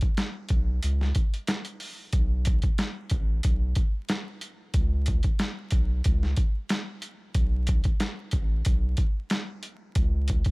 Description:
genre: hip hop, boom-bap hip-hop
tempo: 92 BPM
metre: 4/4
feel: swing 56% on 16ths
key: unclear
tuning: A4 = 441 Hz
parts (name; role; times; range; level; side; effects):
- boom bap sampler-style drum kit; drums; 0.0-10.5 s; hi-hat, kick drum, snare drum; -25 LUFS; equal; overdrive
- soft dub sub bass; bass; 0.5-10.4 s; A1 to C#2; -26 LUFS; equal; none
room: little or no reverb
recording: vinyl crackle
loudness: -24 LUFS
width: side -26 dB against mid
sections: 0.0-10.5 A section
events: none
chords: none

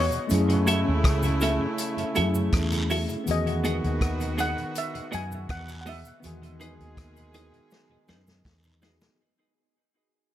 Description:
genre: lovers rock reggae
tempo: 81 BPM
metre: 4/4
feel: straight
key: E major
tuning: A4 = 441 Hz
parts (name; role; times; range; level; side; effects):
- steel pan; melody; 0.0-8.4 s; C#5 to G#5; -32 LUFS; left 2 dB; dub echo
- bell-like tine electric piano; accompaniment; 0.0-9.2 s; D#3 to G#4; -31 LUFS; left 1 dB; medium stereo tremolo, dub echo
- semi-hollow electric guitar; stabs; 0.0-9.1 s; B3 to E5; -32 LUFS; right 2 dB; wide subtle chorus, dub echo
- vintage muted fingered electric bass; bass; 0.0-9.0 s; C#2 to F#2; -27 LUFS; equal; none
- mellow tonewheel organ; accompaniment; 0.1-9.1 s; E2 to E4; -35 LUFS; left 1 dB; none
- vintage drum kit; drums; 0.1-9.2 s; hi-hat, kick drum, rim click, snare drum; -29 LUFS; equal; none
- cabasa and guiro; percussion; 0.1-9.2 s; none; -40 LUFS; right 2 dB; none
- clear horn section; second line; 0.3-8.8 s; C#3 to G#4; -34 LUFS; right 2 dB; dub echo
room: light reverb, studio ambience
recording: none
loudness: -23 LUFS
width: side -12 dB against mid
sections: 0.0-9.2 A section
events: fade-out 0.0-9.2; drum fill 7.7-9.2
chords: 0.3 F#m7; 3.3 Emaj9

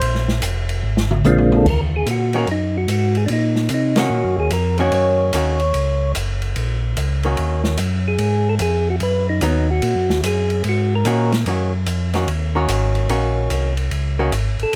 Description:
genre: soul jazz organ trio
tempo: 147 BPM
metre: 4/4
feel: swing 66% on 8ths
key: Eb dorian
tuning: A4 = 440 Hz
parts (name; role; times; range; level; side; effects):
- archtop guitar, miked and amplified; accompaniment; 0.0-14.3 s; Eb3 to C5; -24 LUFS; equal; none
- mellow tonewheel organ; bass; 0.0-14.8 s; F1 to C3; -22 LUFS; equal; overdrive, chorus vibrato, slow rotary speaker
- open jazz drum kit; drums; 0.0-14.8 s; crash cymbal, hi-hat, kick drum, ride cymbal, snare drum, toms; -28 LUFS; equal; none
- percussive tonewheel organ; melody; 1.2-11.3, 14.6-14.7 s; Ab3 to Db5; -22 LUFS; equal; slow rotary speaker, plate reverb
room: light reverb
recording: close, detailed microphones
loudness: -19 LUFS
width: mono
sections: 0.0-1.7 A section; 1.7-14.8 B section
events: hollow-body jazz guitar solo 0.0-1.7; drum fill 0.8-1.7; band accent 3.9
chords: 0.0 Bb7; 1.7 Ebm7; 8.2 Abm7; 9.8 Ebm7

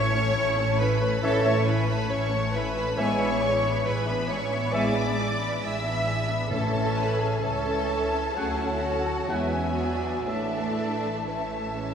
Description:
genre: classical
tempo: 60-70 BPM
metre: 4/4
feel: rubato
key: A major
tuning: A4 = 442 Hz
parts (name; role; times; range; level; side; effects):
- rich studio violin section; melody; 0.0-11.9 s; C#5 to E6; -36 LUFS; left 2 dB; none
- warm symphonic violin section; second line; 0.0-11.9 s; A4 to B5; -35 LUFS; left 3 dB; none
- rich studio viola section; accompaniment; 0.0-11.9 s; G#3 to A4; -32 LUFS; right 1 dB; none
- clear symphonic cello section; bass; 0.0-11.9 s; C#4 to E5; -29 LUFS; equal; none
- dark symphonic double bass section; bass; 0.0-11.9 s; A1 to E2; -30 LUFS; equal; none
- bright large flute ensemble; second line; 1.2-11.9 s; E5 to A5; -34 LUFS; left 2 dB; none
- clear clarinet; second line; 1.2-11.9 s; C#5 to E5; -36 LUFS; equal; none
- warm bassoon; accompaniment; 1.2-11.9 s; E3 to F#3; -35 LUFS; right 2 dB; none
- mellow French horn section; sustained chords; 1.2-10.7 s; E3 to E4; -33 LUFS; equal; none
- warm trumpet; stabs; 1.2-10.7 s; E5 to F#5; -37 LUFS; right 1 dB; none
- timpani; percussion; 6.5-7.9 s; A2; -33 LUFS; left 3 dB; none
room: wet scoring stage reverb, RT60 1.8 s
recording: heard from further back in the room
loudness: -23 LUFS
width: side -7 dB against mid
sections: 0.0-11.9 A section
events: none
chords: 0.0 A; 3.0 E7/A; 6.5 A; 8.4 Dmaj7; 9.3 E9; 10.3 A

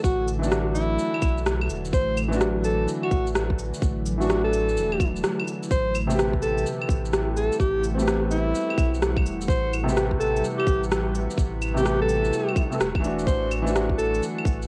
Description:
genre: future garage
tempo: 127 BPM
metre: 4/4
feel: swing 65% on 16ths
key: A dorian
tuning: A4 = 438 Hz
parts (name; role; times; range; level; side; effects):
- breathy alto saxophone; melody; 0.0-14.2 s; E4 to C5; -30 LUFS; equal; cassette tape, tape echo
- felt-muted upright piano; accompaniment; 0.0-14.7 s; C3 to A4; -31 LUFS; equal; sidechain pumping, tape echo
- ethereal airy pad; sustained chords; 0.0-14.7 s; D3 to B4; -35 LUFS; equal; ensemble chorus, built-in reverb, phaser, sidechain pumping
- warm sub bass; bass; 0.0-14.7 s; E1 to B1; -31 LUFS; equal; tube saturation, sidechain pumping
- electronic kick drum; drums; 0.0-14.6 s; none; -26 LUFS; equal; cassette tape
- electronic shaker, cabasa, rim click and claves; drums; 0.0-14.7 s; none; -31 LUFS; equal; cassette tape
- drifting glass-harmonics texture; texture; 7.0-14.7 s; F#4 to F#5; -45 LUFS; equal; chorus, built-in reverb
room: light reverb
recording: home recording on cassette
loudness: -24 LUFS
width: mono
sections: 0.0-5.7 A section; 5.7-14.7 A section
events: break 5.2-5.7; band accent 5.2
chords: 0.0 Dadd9; 5.7 Am9; 13.3 Dadd9

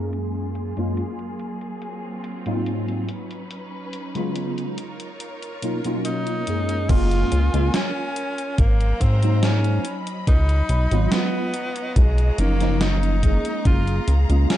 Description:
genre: vaporwave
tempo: 71 BPM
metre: 4/4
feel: straight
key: F# major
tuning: A4 = 443 Hz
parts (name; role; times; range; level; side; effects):
- mellow tine electric piano; accompaniment; 0.0-14.5 s; F#2 to B#4; -26 LUFS; equal; ensemble chorus, vintage 12-bit sampler grit, tape echo
- clear symphonic string section; sustained chords; 0.0-14.6 s; F#3 to B5; -33 LUFS; equal; none
- gated 80s digital drum machine; drums; 0.1-14.6 s; crash cymbal, hi-hat, snare drum; -28 LUFS; right 1 dB; gated reverb, gated reverb snare, small room reverb
- bright tenor saxophone; melody; 6.1-14.6 s; G#3 to E#4; -28 LUFS; equal; vintage 12-bit sampler grit, tape echo
- chorused synth bass; bass; 6.9-14.5 s; F#1 to G#2; -19 LUFS; equal; tube saturation
- electronic kick drum; drums; 6.9-13.8 s; none; -18 LUFS; equal; small room reverb
room: digital ambience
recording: low-pass filter, nothing above 10.5 kHz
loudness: -19 LUFS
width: side -13 dB against mid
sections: 0.0-6.9 A section; 6.9-14.6 B section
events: filter sweep 0.0-6.9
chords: 0.1 F#maj9; 1.8 G#13; 3.1 C#9sus4; 4.8 Bmaj9#11; 6.9 F#maj9; 8.6 G#13; 9.9 C#9sus4; 11.5 Bmaj9#11; 13.7 F#maj9

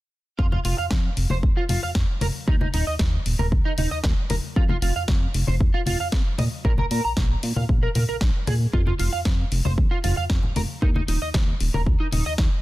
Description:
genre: nu-disco, nu disco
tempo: 115 BPM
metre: 4/4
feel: straight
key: unclear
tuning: A4 = 441 Hz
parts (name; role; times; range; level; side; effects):
- electric guitar at the edge of break-up; riff; 0.4-12.3 s; Eb4 to Bb5; -29 LUFS; right 2 dB; analog chorus, digital delay
- chorused synth bass; bass; 0.4-12.5 s; Eb1 to Bb2; -24 LUFS; equal; none
- electronic kick drum; drums; 0.4-12.5 s; none; -22 LUFS; equal; none
- congas; percussion; 0.5-12.2 s; none; -30 LUFS; left 2 dB; none
- house drum kit; drums; 0.6-12.5 s; hi-hat, snare drum; -31 LUFS; left 1 dB; none
room: digital ambience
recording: dense, heavily limited modern master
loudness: -20 LUFS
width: side -17 dB against mid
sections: 0.4-12.6 A section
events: none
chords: 0.4 F5; 2.5 Eb5; 4.3 F5; 6.4 Bb5; 8.7 F5; 10.8 Eb5

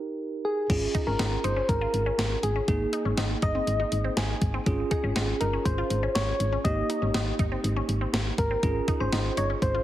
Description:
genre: synth-pop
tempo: 121 BPM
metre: 4/4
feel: straight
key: unclear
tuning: A4 = 440 Hz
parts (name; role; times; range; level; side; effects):
- bell-like tine electric piano; accompaniment; 0.0-9.8 s; Bb3 to Ab5; -33 LUFS; right 4 dB; auto-pan
- soft struck synth lead; melody; 0.4-9.8 s; Ab4 to Eb5; -29 LUFS; left 1 dB; chorus
- solid FM bass; bass; 0.7-9.8 s; G1 to Ab1; -29 LUFS; equal; none
- gated 80s digital drum machine; drums; 0.7-9.7 s; crash cymbal, hi-hat, kick drum, snare drum; -29 LUFS; equal; gated reverb, gated reverb snare
- resonant blip pluck; arpeggios; 0.9-9.8 s; C4 to F4; -36 LUFS; left 1 dB; phaser, tape echo
room: light reverb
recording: heavily compressed radio sound, multiband compression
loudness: -24 LUFS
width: side -13 dB against mid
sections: 0.7-9.8 A section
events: stop 0.0-0.7; tine electric piano fill 3.9-4.7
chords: 0.0 Eb; 0.7 Db; 2.7 Absus2; 4.7 Db; 6.6 Eb; 8.6 Db

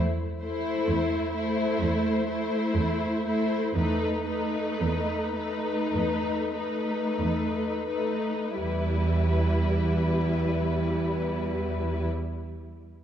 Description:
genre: classical, slow romantic movement for string orchestra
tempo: 41-66 BPM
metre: 4/4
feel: rubato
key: E minor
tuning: A4 = 440 Hz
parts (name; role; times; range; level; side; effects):
- rich symphonic cello section; bass; 0.0-12.1 s; E2; -28 LUFS; right 2 dB; none
- rich symphonic violin section; melody; 0.4-12.1 s; B4 to C5; -34 LUFS; left 6 dB; none
- warm symphonic violin section; second line; 0.4-12.1 s; D#4 to E4; -31 LUFS; left 2 dB; none
- warm symphonic viola section; accompaniment; 0.4-12.1 s; G3 to A3; -30 LUFS; right 1 dB; none
room: moderate concert hall reverb, RT60 2.4 s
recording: dark, warm production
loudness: -25 LUFS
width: side -9 dB against mid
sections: 0.0-8.6 A section; 8.6-13.0 B section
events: slowing down 0.0-8.6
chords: 0.0 Am/E; 8.6 Em

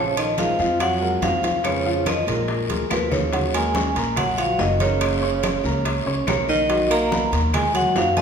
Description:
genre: Afro-Cuban jazz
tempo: 142 BPM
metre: 4/4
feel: straight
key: Bb minor, Eb minor from 3.3 s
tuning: A4 = 438 Hz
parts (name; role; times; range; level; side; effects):
- vibraphone with medium hard mallets; melody; 0.0-8.2 s; Bb4 to A#5; -23 LUFS; right 1 dB; none
- warm tenor saxophone; second line; 0.0-8.2 s; Bb2 to A#3; -27 LUFS; right 4 dB; none
- warm baby grand piano; accompaniment; 0.0-8.2 s; F3 to Db6; -26 LUFS; left 3 dB; none
- upright bass; bass; 0.0-8.2 s; Gb1 to F#2; -27 LUFS; equal; none
- claves; percussion; 0.2-7.7 s; none; -37 LUFS; left 4 dB; none
- congas; percussion; 0.2-8.2 s; none; -31 LUFS; left 1 dB; none
- timbales; percussion; 0.2-8.2 s; none; -30 LUFS; right 4 dB; none
- bongos; percussion; 0.4-8.2 s; none; -33 LUFS; left 4 dB; none
- guiro; percussion; 0.4-8.2 s; none; -34 LUFS; left 5 dB; none
room: wet recital hall reverb, RT60 1.5 s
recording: recorded in a church or concert hall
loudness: -18 LUFS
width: side -7 dB against mid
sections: 0.0-3.3 A section; 3.3-8.2 B section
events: drum fill 2.7-3.3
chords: 0.0 Bb5; 1.6 Fdim; 2.5 Bb7; 3.3 Ebm7; 5.0 Gb; 6.7 Bmaj7

